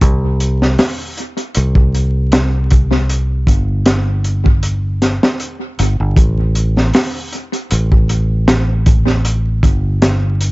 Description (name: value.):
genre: trip hop.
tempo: 78 BPM.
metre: 4/4.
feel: swing 54% on 16ths.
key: unclear.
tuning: A4 = 440 Hz.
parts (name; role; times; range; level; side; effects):
fingered electric bass; bass; 0.0-10.5 s; G1 to C2; -14 LUFS; equal; none.
crunchy breakbeat drum kit; drums; 0.0-10.5 s; hi-hat, kick drum, snare drum; -14 LUFS; equal; analog delay.
room: little or no reverb.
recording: echo-heavy mix, vinyl crackle, nothing above 7.8 kHz.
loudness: -12 LUFS.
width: side -21 dB against mid.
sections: 0.0-10.5 A section.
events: none.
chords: none.